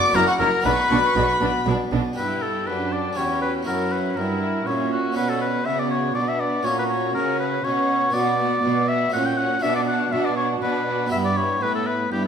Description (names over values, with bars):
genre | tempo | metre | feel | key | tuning
classical, baroque-style concerto movement with solo episodes | 121 BPM | 3/4 | straight | B minor | A4 = 437 Hz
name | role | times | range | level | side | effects
clear oboe | melody | 0.0-12.2 s | F#4 to G5 | -23 LUFS | left 2 dB | none
rich chamber violin section | melody | 0.0-12.3 s | E5 to D6 | -32 LUFS | left 5 dB | none
warm chamber violin section | second line | 0.0-12.3 s | D4 to D6 | -29 LUFS | left 2 dB | none
harpsichord | accompaniment | 0.0-12.3 s | E2 to G4 | -28 LUFS | right 1 dB | none
clear studio viola section | accompaniment | 0.1-12.3 s | B3 to E4 | -28 LUFS | right 1 dB | none
clear chamber double bass section | bass | 0.1-2.0 s | F#1 to B1 | -28 LUFS | right 4 dB | none
rich chamber cello section | bass | 0.1-12.3 s | E2 to C#3 | -28 LUFS | right 5 dB | none
room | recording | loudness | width
wet recital hall reverb, RT60 1.3 s | none | -19 LUFS | side -7 dB against mid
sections
0.0-2.2 A section; 2.2-12.3 B section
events
none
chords
0.1 F#7; 0.6 Bm; 2.2 G5; 3.2 C#dim/E; 3.7 F#7; 5.2 Bm; 6.7 F#/A#; 8.1 Bm; 9.1 F#/A#; 9.6 Bm; 11.1 Em/G